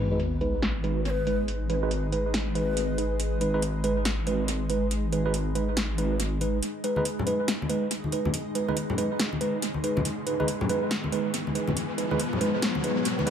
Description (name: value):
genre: deep dubstep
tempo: 140 BPM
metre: 4/4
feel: swing 62% on 16ths, half-time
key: G# minor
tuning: A4 = 442 Hz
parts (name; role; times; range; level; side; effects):
- granular cloud pad; sustained chords; 0.0-13.3 s; G#3 to D#4; -33 LUFS; left 1 dB; built-in reverb
- tine electric piano; stabs; 0.0-13.3 s; G#3 to B4; -29 LUFS; moving between equal and right 6 dB; auto-pan, low-pass filter, tape echo
- wobble bass; bass; 0.0-6.6 s; G#1; -29 LUFS; equal; chorus, tube saturation
- sub drop and riser; sound effects; 0.0-1.5, 8.7-13.3 s; none; -35 LUFS; equal; none
- deep house drum kit; drums; 0.2-13.3 s; hi-hat, snare drum; -32 LUFS; equal; overdrive, low-pass filter on hats, small room ambience, low-pass filter on perc, low-pass filter on snare, low-pass filter on cymbals, tape echo
- breathy mellow ney; melody; 1.1-3.0 s; B4 to C#5; -35 LUFS; left 6 dB; dub echo
- congas; percussion; 7.0-13.3 s; none; -32 LUFS; left 2 dB; dub echo
room: moderate spring reverb, RT60 1.9 s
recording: echo-heavy mix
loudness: -25 LUFS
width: side -8 dB against mid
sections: 0.0-6.6 A section; 6.6-13.3 B section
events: impact 0.0-1.5; filter sweep on drum 0.0-6.6; filter sweep on tine electric piano 0.0-6.6; build-up 6.6-13.3; riser 8.7-13.3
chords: 0.0 G#m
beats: 0.20 0.62 1.05 | 1.48 1.91 2.34 2.77 | 3.19 3.62 4.05 4.48 | 4.91 5.34 5.77 6.20 | 6.62 7.05 7.48 7.91 | 8.34 8.77 9.20 9.62 | 10.05 10.48 10.91 11.34 | 11.77 12.20 12.62 13.05